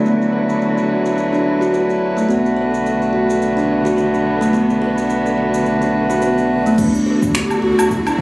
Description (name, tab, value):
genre	organic downtempo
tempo	107 BPM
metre	4/4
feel	swing 57% on 16ths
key	B minor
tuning	A4 = 440 Hz
part	pedal harmonium	accompaniment	0.0-8.2 s	F#3 to B4	-18 LUFS	equal	vintage 12-bit sampler grit, sidechain pumping, tape echo
part	warm studio string section	sustained chords	0.0-8.2 s	D3 to F#4	-23 LUFS	equal	sidechain pumping, low-pass filter
part	kalimba	arpeggios	0.0-8.2 s	A3 to B4	-17 LUFS	equal	low-pass filter, tape echo
part	warm sub bass	bass	0.0-8.1 s	D1 to D2	-33 LUFS	equal	none
part	deep house drum kit	drums	0.1-8.2 s	cabasa, crash cymbal, finger snaps, woodblock	-25 LUFS	equal	overdrive, low-pass filter on snare, low-pass filter on perc, low-pass filter on cymbals, low-pass filter on room
part	breathy mellow low ney	melody	6.2-8.2 s	B3 to G4	-20 LUFS	equal	none
part	electronic kick drum	drums	6.8-8.2 s	none	-21 LUFS	equal	overdrive
room	moderate echo chamber reverb, RT60 2.1 s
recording	recorded on a phone in the room, club reverb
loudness	-14 LUFS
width	side -24 dB against mid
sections	0.0-6.8 A section; 6.8-8.2 B section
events	filter sweep on kalimba 0.0-6.8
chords	0.0 D69; 2.3 Bm7; 6.8 D69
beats	| 0.05 0.61 1.17 1.73 | 2.29 2.85 3.42 3.98 | 4.54 5.10 5.66 6.22 | 6.78 7.34 7.90